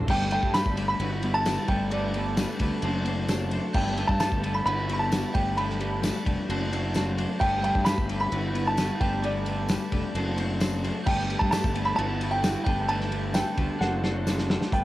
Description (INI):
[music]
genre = indie rock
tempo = 131 BPM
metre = 4/4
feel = straight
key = G major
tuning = A4 = 438 Hz
[part]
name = clean electric guitar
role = riff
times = 0.0-14.8 s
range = F#3 to C5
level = -32 LUFS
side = left 6 dB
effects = cassette tape
[part]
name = twelve-string electric guitar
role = riff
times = 0.0-14.8 s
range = F#3 to A4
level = -35 LUFS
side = right 6 dB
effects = lush chorus, cassette tape, tape echo
[part]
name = fuzz fingered electric bass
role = bass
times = 0.0-14.8 s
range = F1 to G2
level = -30 LUFS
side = equal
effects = overdrive
[part]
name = warm upright piano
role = melody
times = 0.1-14.8 s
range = D5 to B5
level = -29 LUFS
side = right 1 dB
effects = cassette tape, tape echo
[part]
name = glockenspiel with hard plastic mallets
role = second line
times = 0.1-14.4 s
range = D6 to B6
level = -43 LUFS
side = right 6 dB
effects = cassette tape
[part]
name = loose indie drum kit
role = drums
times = 0.1-14.8 s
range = crash cymbal, hi-hat, kick drum, ride cymbal, snare drum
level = -29 LUFS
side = equal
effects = cassette tape
[part]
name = tambourine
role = percussion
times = 0.5-14.4 s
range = none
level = -43 LUFS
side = left 6 dB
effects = none
[sound]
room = little or no reverb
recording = home recording on cassette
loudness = -24 LUFS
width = side -15 dB against mid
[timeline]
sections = 0.1-14.7 A section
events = drum fill 13.8-14.7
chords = 0.1 Gadd9; 1.0 Emadd9/G; 1.7 Gadd9; 2.8 D7/F#; 3.8 Gadd9; 4.7 Emadd9/G; 5.4 Gadd9; 6.5 D7/F#; 7.4 Gadd9; 8.3 Emadd9/G; 9.0 Gadd9; 10.2 D7/F#; 11.1 Gadd9; 12.0 Emadd9/G; 12.7 Gadd9; 13.8 D7/F#